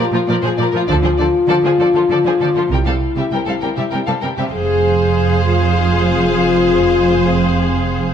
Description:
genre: cinematic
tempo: 66 BPM (dotted quarters)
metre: 12/8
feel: straight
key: F minor from 4.5 s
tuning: A4 = 441 Hz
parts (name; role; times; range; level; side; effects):
- rich chamber violin section; melody; 0.0-8.1 s; A4 to G5; -25 LUFS; left 2 dB; none
- warm symphonic violin section; second line; 0.0-8.1 s; F4 to C5; -23 LUFS; left 2 dB; none
- rich symphonic viola section; accompaniment; 0.0-8.1 s; F3 to Ab4; -23 LUFS; right 2 dB; none
- warm French horn section; sustained chords; 0.0-8.1 s; C4 to Ab4; -17 LUFS; left 4 dB; none
- rich symphonic cello section; bass; 0.0-8.1 s; F2 to D3; -21 LUFS; right 3 dB; none
- rich symphonic double bass section; bass; 0.9-8.1 s; F1 to D2; -18 LUFS; right 4 dB; none
room: moderate scoring stage reverb, RT60 1.6 s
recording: dark, warm production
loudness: -13 LUFS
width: side -8 dB against mid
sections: 0.0-4.5 A section; 4.5-8.1 B section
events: none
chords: 0.0 Bb5; 0.9 Dm; 2.7 C; 4.5 Fm

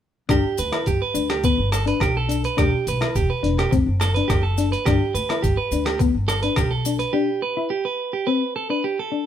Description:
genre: highlife guitar band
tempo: 105 BPM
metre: 4/4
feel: straight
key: G major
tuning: A4 = 440 Hz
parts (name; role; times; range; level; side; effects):
- mellow electric guitar; accompaniment; 0.3-9.3 s; B3 to E4; -24 LUFS; left 8 dB; none
- clean electric guitar; arpeggios; 0.3-9.3 s; G4 to B4; -24 LUFS; right 6 dB; none
- upright bass; bass; 0.3-7.0 s; E1 to D2; -24 LUFS; equal; none
- boom bap sampler-style drum kit; drums; 0.3-7.1 s; hi-hat, kick drum, rim click; -24 LUFS; equal; none
- agogo bells; percussion; 0.3-6.7 s; none; -34 LUFS; left 8 dB; none
- maracas; percussion; 0.3-7.1 s; none; -36 LUFS; left 4 dB; none
room: moderate stone room reverb, RT60 0.9 s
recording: band playing live in one room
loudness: -19 LUFS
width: side -10 dB against mid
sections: 0.3-9.3 A section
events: break 7.1-9.3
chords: 0.3 G; 2.6 Em; 3.7 D/F#; 4.9 G; 7.1 Em; 8.3 D5

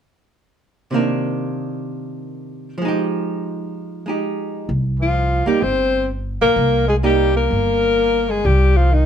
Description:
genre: jazz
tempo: 128 BPM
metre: 4/4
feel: swing 67% on 8ths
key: C minor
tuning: A4 = 440 Hz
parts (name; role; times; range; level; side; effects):
- archtop guitar, miked and amplified; accompaniment; 0.9-7.3 s; C3 to G4; -21 LUFS; right 4 dB; none
- upright bass; bass; 4.7-9.1 s; G1 to C2; -18 LUFS; equal; none
- breathy alto saxophone; melody; 5.0-9.1 s; Eb4 to C5; -18 LUFS; left 5 dB; none
- breathy tenor saxophone; second line; 5.0-9.1 s; Eb3 to C4; -22 LUFS; right 6 dB; none
room: light reverb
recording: dark, warm production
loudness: -16 LUFS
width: side -8 dB against mid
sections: 0.9-4.7 A section; 4.7-9.1 B section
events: none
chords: 0.9 Cm9; 2.8 Fm9; 4.7 C7(no3)

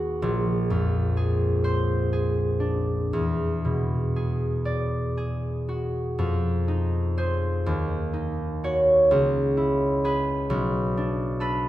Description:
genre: classical, solo harp piece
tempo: 41 BPM (dotted quarters)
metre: 6/8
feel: uneven beats, rubato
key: unclear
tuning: A4 = 440 Hz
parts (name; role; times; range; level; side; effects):
- concert harp; solo; 0.0-11.7 s; Bb1 to D5; -22 LUFS; equal; none
room: wet recital hall reverb, RT60 1.8 s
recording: minimal, uncompressed stereo recording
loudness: -22 LUFS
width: side -14 dB against mid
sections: 0.0-11.7 A section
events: none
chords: 0.2 Bb9; 3.1 E9; 6.2 Fm7; 7.7 Ebm7; 9.1 Dbm7; 10.5 Bm7

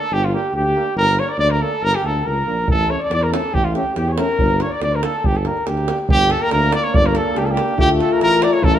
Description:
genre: balkan folk, Balkan brass band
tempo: 141 BPM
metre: 2/4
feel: straight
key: G dorian sharp4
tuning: A4 = 438 Hz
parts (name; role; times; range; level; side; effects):
- mellow trumpet; melody; 0.0-8.8 s; F4 to D5; -19 LUFS; right 1 dB; none
- dark trumpet; second line; 0.0-8.8 s; F4 to D5; -26 LUFS; left 3 dB; none
- mellow tuba; bass; 0.1-8.8 s; G1 to E2; -22 LUFS; equal; none
- bright trombone; accompaniment; 0.3-8.8 s; A3 to Bb3; -29 LUFS; right 5 dB; none
- warm euphonium; accompaniment; 0.3-8.8 s; C#4 to F4; -24 LUFS; left 5 dB; none
- davul; percussion; 2.7-8.8 s; none; -22 LUFS; right 1 dB; none
room: wet stone room reverb, RT60 1.1 s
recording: band playing live in one room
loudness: -15 LUFS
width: side -10 dB against mid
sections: 0.0-6.1 A section; 6.1-8.8 B section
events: none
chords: 0.0 Gm; 2.7 A; 4.4 Gm; 7.8 Dm

